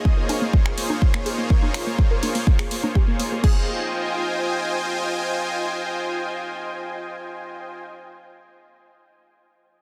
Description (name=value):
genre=progressive house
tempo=124 BPM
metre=4/4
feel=straight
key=F minor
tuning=A4 = 440 Hz
part: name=supersaw pad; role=sustained chords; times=0.0-7.8 s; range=Bb3 to Ab5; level=-28 LUFS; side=equal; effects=sidechain pumping
part: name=backwards swelling texture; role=texture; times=0.0-3.4 s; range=Eb4 to Eb5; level=-42 LUFS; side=equal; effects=none
part: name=analog pluck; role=arpeggios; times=0.1-7.8 s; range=Bb3 to Bb4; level=-33 LUFS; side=equal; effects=chorus, sidechain pumping, tape echo
part: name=electronic kick drum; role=drums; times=0.1-3.5 s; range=none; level=-20 LUFS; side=equal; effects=small room ambience
part: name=house drum kit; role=drums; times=0.3-3.5 s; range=crash cymbal, finger snaps, hi-hat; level=-34 LUFS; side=equal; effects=soft clipping on snare, small room ambience, sidechain pumping on hats, sidechain pumping on cymbals
part: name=congas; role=percussion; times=0.3-2.9 s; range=none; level=-30 LUFS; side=equal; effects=sidechain pumping on perc, small room ambience
room=little or no reverb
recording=dense, heavily limited modern master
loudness=-23 LUFS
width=mono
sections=0.0-3.4 A section; 3.4-7.3 B section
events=none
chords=0.0 Bbm7; 3.4 Fm7